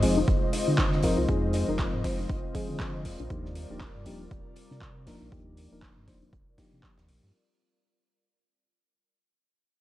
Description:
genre	deep house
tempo	119 BPM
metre	4/4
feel	swing 58% on 16ths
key	unclear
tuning	A4 = 441 Hz
part	airy breathy pad	sustained chords	0.0-7.3 s	G3 to Eb5	-34 LUFS	left 1 dB	chorus, vintage 12-bit sampler grit, sidechain pumping
part	soft round pluck	arpeggios	0.0-7.3 s	D4 to F5	-34 LUFS	left 3 dB	chorus, sidechain pumping, tape echo
part	mellow FM electric piano	stabs	0.0-7.3 s	F3 to Eb5	-31 LUFS	left 2 dB	chorus, low-pass filter, analog delay
part	sub bass with octave	bass	0.0-7.3 s	Eb1 to D3	-32 LUFS	equal	sidechain pumping
part	deep house drum kit	drums	0.0-7.2 s	handclaps, hi-hat	-37 LUFS	equal	overdrive, vintage 12-bit sampler grit, studio reverb
part	gated 80s drum kit	drums	0.0-7.3 s	hi-hat, snare drum	-46 LUFS	right 2 dB	high-pass filter on hats, vintage 12-bit sampler grit, studio reverb, high-pass filter on snare, high-pass filter on room
part	electronic kick drum	drums	0.3-7.0 s	none	-30 LUFS	equal	overdrive, vintage 12-bit sampler grit, studio reverb
room	small room reverb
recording	cassette tape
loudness	-25 LUFS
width	side -15 dB against mid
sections	0.0-7.3 A section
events	fade-out 0.0-7.3; filter sweep on FM electric piano 0.0-7.3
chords	0.0 Fm7; 3.1 Ebmaj9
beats	0.28 0.78 | 1.29 1.79 2.29 2.80 | 3.30 3.81 4.31 4.82 | 5.32 5.82 6.33 6.83

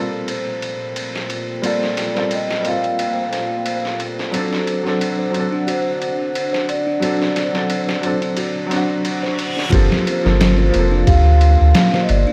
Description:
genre	trip hop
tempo	89 BPM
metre	4/4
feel	swing 56% on 16ths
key	G minor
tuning	A4 = 441 Hz
part	vibraphone with soft mallets	melody	0.0-12.3 s	A4 to F5	-26 LUFS	equal	tape echo
part	warm upright piano	accompaniment	0.0-12.3 s	F3 to A4	-25 LUFS	equal	harmonic tremolo, vintage 12-bit sampler grit
part	dark analog pad	sustained chords	0.0-12.3 s	Bb3 to C6	-30 LUFS	equal	chorus, phaser
part	trip hop sampler-style drum kit	drums	0.3-12.3 s	kick drum, ride cymbal, snare drum	-24 LUFS	equal	high-pass filter on cymbals, high-pass filter on kick, high-pass filter on snare, high-pass filter on room
part	music box	arpeggios	4.3-12.3 s	D4 to C5	-30 LUFS	equal	tape echo
part	reverse cymbal	sound effects	9.2-9.7 s	none	-32 LUFS	equal	none
part	soft dub sub bass	bass	9.7-12.3 s	F1 to D2	-15 LUFS	equal	none
room	light reverb, digital ambience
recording	vinyl crackle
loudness	-18 LUFS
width	mono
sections	0.0-9.7 A section; 9.7-12.3 B section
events	reverse cymbal 9.2-9.7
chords	0.0 Gm11; 4.3 D7; 9.7 Gm11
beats	0.28 0.96 | 1.63 2.30 2.98 3.65 | 4.33 5.00 5.67 6.35 | 7.02 7.70 8.37 9.04 | 9.72 10.39 11.07 11.74

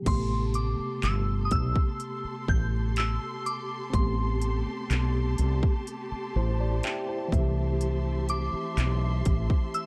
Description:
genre	contemporary R&B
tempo	62 BPM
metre	4/4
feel	straight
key	A minor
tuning	A4 = 440 Hz
part	mellow tine electric piano	accompaniment	0.0-9.9 s	C3 to C6	-36 LUFS	equal	none
part	soft synth bell	melody	0.1-9.9 s	C6 to G6	-37 LUFS	equal	chorus, delay
part	warm studio string section	sustained chords	0.1-9.9 s	G4 to C6	-41 LUFS	equal	sidechain pumping
part	woody fretless electric bass	bass	0.1-9.5 s	G1 to C2	-29 LUFS	equal	none
part	trap drum kit	drums	0.1-9.9 s	crash cymbal, handclaps, hi-hat, kick drum	-30 LUFS	equal	overdrive
room	little or no reverb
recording	dark, warm production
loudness	-28 LUFS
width	mono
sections	0.1-9.9 A section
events	tine electric piano fill 5.9-7.8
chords	0.1 Am9; 7.3 C6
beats	| 0.06 1.03 2.00 2.97 | 3.94 4.90 5.87 6.84 | 7.81 8.77 9.74

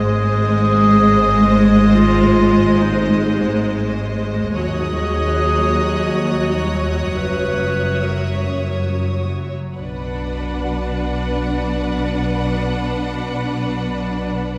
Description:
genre	cinematic, suspense film score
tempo	69 BPM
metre	3/4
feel	straight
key	B minor from 9.8 s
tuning	A4 = 440 Hz
part	rich studio violin section	melody	0.0-14.6 s	Eb5 to F#5	-33 LUFS	equal	none
part	bright clarinet	second line	0.0-9.3 s	Eb4 to Cb5	-22 LUFS	equal	none
part	rich symphonic violin section	second line	0.0-14.6 s	B4 to Db5	-30 LUFS	equal	none
part	rich symphonic viola section	accompaniment	0.0-14.6 s	Gb3 to D4	-24 LUFS	equal	none
part	rich symphonic cello section	bass	0.0-14.6 s	Eb2 to B2	-24 LUFS	equal	none
part	rich symphonic double bass section	bass	0.0-14.6 s	Gb1 to Eb2	-24 LUFS	equal	none
part	celesta	texture	0.0-14.6 s	Db4 to F#5	-36 LUFS	equal	none
part	warm symphonic violin section	texture	4.6-9.3 s	Eb6 to Gb6	-36 LUFS	equal	none
room	wet scoring stage reverb, RT60 2.2 s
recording	heard from further back in the room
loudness	-18 LUFS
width	mono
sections	0.0-9.8 A section; 9.8-14.6 B section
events	none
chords	0.0 Ab; 4.6 Ebm7; 7.2 Gb7; 9.8 Bm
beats	0.21 1.08 | 1.95 2.82 3.69 | 4.56 5.42 6.29 | 7.16 8.03 8.90 | 9.77 10.64 11.51 | 12.38 13.25 14.12

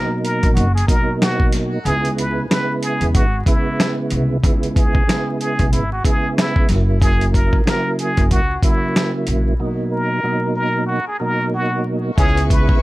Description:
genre	hip hop, boom-bap hip-hop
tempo	93 BPM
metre	4/4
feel	swing 59% on 16ths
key	C# dorian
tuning	A4 = 440 Hz
part	trumpet with plunger mute	melody	0.0-12.8 s	E4 to B4	-23 LUFS	equal	high-pass filter, low-pass filter, plate reverb, tape echo
part	percussive tonewheel organ	accompaniment	0.0-12.8 s	B2 to E4	-21 LUFS	right 2 dB	chorus vibrato, fast rotary speaker, cassette tape, high-pass filter, low-pass filter, plate reverb
part	dusty soul sampler-style drum kit	drums	0.2-12.8 s	hi-hat, kick drum, snare drum	-17 LUFS	equal	none
part	upright bass	bass	0.4-12.7 s	F#1 to E2	-20 LUFS	equal	none
part	rich studio string section	sustained chords	12.2-12.8 s	B4 to C#6	-28 LUFS	left 1 dB	high-pass filter, low-pass filter
part	warm horn section	stabs	12.2-12.4 s	E3 to G#4	-27 LUFS	left 4 dB	high-pass filter, low-pass filter, plate reverb, tape echo
room	light reverb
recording	vinyl crackle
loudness	-15 LUFS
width	side -18 dB against mid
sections	0.0-12.2 A section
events	break 1.9-3.1, 9.6-12.2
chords	0.0 Bmaj7; 1.9 C#m7; 6.7 F#7; 9.6 Bmaj7; 12.2 C#m7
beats	0.56 1.21 | 1.85 2.50 3.15 3.79 | 4.43 5.08 5.72 6.37 | 7.02 7.66 8.31 8.95 | 9.60 10.24 10.89 11.53 | 12.18

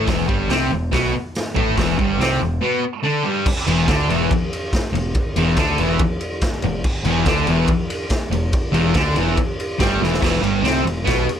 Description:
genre	garage rock duo or trio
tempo	142 BPM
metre	4/4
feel	straight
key	E minor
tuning	A4 = 440 Hz
part	fuzz guitar	riff	0.0-11.3 s	E2 to D4	-19 LUFS	equal	distortion
part	growling picked electric bass	bass	0.0-11.3 s	E1 to D2	-23 LUFS	equal	overdrive
part	raw garage drum kit	drums	0.1-11.4 s	crash cymbal, hi-hat, kick drum, ride cymbal, snare drum	-22 LUFS	equal	none
room	light reverb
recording	none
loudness	-17 LUFS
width	side -9 dB against mid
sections	0.0-3.5 A section; 3.5-10.2 B section; 10.2-11.4 C section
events	drum fill 10.0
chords	0.0 Em; 3.5 N.C.; 10.2 Em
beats	| 0.07 0.49 0.92 1.34 | 1.76 2.19 2.61 3.03 | 3.46 3.88 4.30 4.72 | 5.14 5.57 5.99 6.41 | 6.83 7.25 7.67 8.10 | 8.52 8.94 9.36 9.79 | 10.21 10.63 11.05

